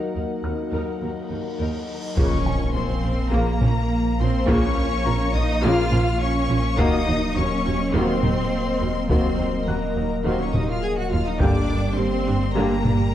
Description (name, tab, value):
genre	cinematic, hybrid orchestral and electronic film score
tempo	104 BPM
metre	4/4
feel	straight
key	Bb minor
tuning	A4 = 441 Hz
part	rich chamber violin section	melody	0.0-13.1 s	Gb5 to Ab6	-32 LUFS	left 6 dB	low-pass filter
part	rich studio viola section	accompaniment	0.0-12.9 s	Db3 to Bb4	-29 LUFS	equal	low-pass filter
part	warbly tape-like pad	sustained chords	0.0-13.1 s	F3 to G5	-28 LUFS	left 1 dB	chorus, built-in reverb, low-pass filter
part	warm French horn section	sustained chords	0.0-12.8 s	Bb3 to G4	-30 LUFS	left 3 dB	low-pass filter
part	cymbal swell and impact	sound effects	1.8-4.5 s	none	-31 LUFS	equal	none
part	felt-muted upright piano	texture	0.0-13.1 s	Bb4 to C7	-39 LUFS	left 2 dB	digital delay
part	bright studio double bass section	bass	0.1-12.9 s	Bb1 to G2	-26 LUFS	right 3 dB	none
part	rich symphonic cello section	bass	0.2-13.1 s	Eb2 to Ab4	-28 LUFS	right 2 dB	none
part	warm symphonic violin section	second line	2.2-13.1 s	Bb4 to Ab5	-32 LUFS	left 3 dB	none
part	saturated sub bass	bass	2.2-13.1 s	Eb1 to Bb1	-27 LUFS	equal	none
part	solo taiko drums	drums	2.2-13.1 s	none	-25 LUFS	equal	none
room	moderate scoring stage reverb, RT60 2.0 s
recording	dark, warm production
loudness	-20 LUFS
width	side -11 dB against mid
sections	0.0-2.2 A section; 2.2-13.1 B section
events	filter sweep 0.0-2.2; cymbal swell 1.8-2.2; impact 2.2-4.5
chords	0.0 Ebm; 2.2 Bbm; 6.8 Ebm; 11.4 Gm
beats	0.44 1.02 1.59 | 2.17 2.75 3.33 3.90 | 4.48 5.06 5.63 6.21 | 6.79 7.36 7.94 8.52 | 9.10 9.67 10.25 10.83 | 11.40 11.98 12.56 13.13